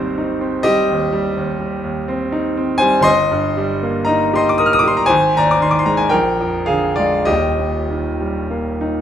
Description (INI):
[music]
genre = classical, romantic nocturne for solo piano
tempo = 49-65 BPM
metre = 4/4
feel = rubato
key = Eb major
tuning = A4 = 440 Hz
[part]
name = bright concert grand piano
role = solo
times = 0.0-9.0 s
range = Eb1 to F6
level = -14 LUFS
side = equal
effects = none
[sound]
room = light reverb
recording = close, detailed microphones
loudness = -14 LUFS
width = side -9 dB against mid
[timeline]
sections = 0.0-9.0 A section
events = none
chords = 0.0 Abmaj7; 3.1 Eb/G; 5.1 Ab; 6.1 Bb7; 7.3 Eb